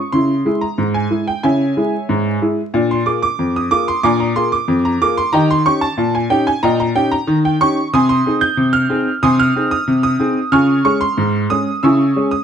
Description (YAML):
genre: ragtime piano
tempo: 92 BPM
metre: 2/4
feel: straight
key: unclear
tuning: A4 = 439 Hz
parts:
  - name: clear upright piano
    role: solo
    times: 0.0-12.4 s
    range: F2 to G6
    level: -13 LUFS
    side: equal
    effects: none
room: light reverb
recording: dark, warm production, vinyl crackle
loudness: -13 LUFS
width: side -8 dB against mid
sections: 0.0-12.4 A section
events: none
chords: 0.1 Dbm; 2.7 Bb7; 5.3 Eb7/Bb; 7.9 Ab/C; 10.5 Db; 11.8 Dbm